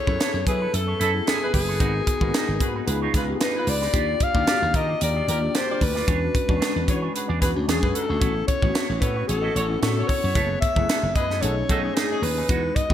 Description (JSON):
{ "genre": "polished 1980s jazz-funk pop", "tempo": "112 BPM", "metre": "4/4", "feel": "swing 54% on 16ths", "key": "F# dorian", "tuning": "A4 = 441 Hz", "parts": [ { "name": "breathy alto saxophone", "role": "melody", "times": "0.0-12.9 s", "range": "G#4 to E#5", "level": "-26 LUFS", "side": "left 2 dB", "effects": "none" }, { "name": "tine electric piano", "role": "accompaniment", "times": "0.0-12.9 s", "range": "D#3 to A#4", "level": "-29 LUFS", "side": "left 3 dB", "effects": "overdrive, fast stereo tremolo, ensemble chorus" }, { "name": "electric guitar with an envelope filter", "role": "riff", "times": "0.1-12.9 s", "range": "G#3 to D#5", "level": "-32 LUFS", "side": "right 6 dB", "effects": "wide subtle chorus" }, { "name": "slap bass", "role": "bass", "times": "0.1-12.9 s", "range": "F#1 to F#3", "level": "-26 LUFS", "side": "equal", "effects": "none" }, { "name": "crisp fusion drum kit", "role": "drums", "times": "0.1-12.9 s", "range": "hi-hat, kick drum, snare drum", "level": "-24 LUFS", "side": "right 1 dB", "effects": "gated reverb" }, { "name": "mellow horn section", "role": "second line", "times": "0.5-12.5 s", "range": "C#4 to D5", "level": "-33 LUFS", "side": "right 2 dB", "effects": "none" } ], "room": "light reverb, small room ambience", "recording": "bright 1980s-style digital production", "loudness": "-20 LUFS", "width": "side -10 dB against mid", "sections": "0.0-12.9 A section", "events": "none", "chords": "0.0 F#m11; 1.8 G#m7; 2.9 C#9; 3.9 D#maj9; 6.1 E13; 8.2 A6; 10.4 F#m11; 11.4 B13" }